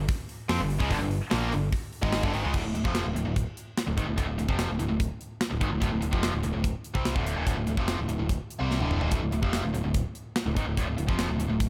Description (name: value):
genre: hard rock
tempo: 146 BPM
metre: 4/4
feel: straight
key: D minor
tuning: A4 = 438 Hz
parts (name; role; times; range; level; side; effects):
- high-gain distorted guitar; riff; 0.0-11.7 s; D2 to C4; -36 LUFS; equal; distortion
- overdriven electric guitar; riff; 0.0-11.7 s; D2 to C4; -35 LUFS; equal; phaser
- tight distorted guitar; riff; 0.0-2.5 s; G2 to C4; -37 LUFS; equal; distortion
- growling picked electric bass; bass; 0.0-11.7 s; D1 to F2; -34 LUFS; equal; overdrive
- tight metal drum kit; drums; 0.1-11.7 s; crash cymbal, hi-hat, kick drum, snare drum, toms; -33 LUFS; equal; none
room: small room ambience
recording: none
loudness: -28 LUFS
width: mono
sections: 0.0-2.5 A section; 2.5-11.7 B section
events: drum fill 8.7-9.1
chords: 0.0 G5; 2.5 Dm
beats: 0.09 0.50 | 0.91 1.31 1.72 2.13 | 2.54 2.95 3.36 3.77 | 4.18 4.59 5.00 5.41 | 5.82 6.23 6.65 7.06 | 7.47 7.88 8.29 8.71 | 9.12 9.53 9.95 10.36 | 10.77 11.19 11.60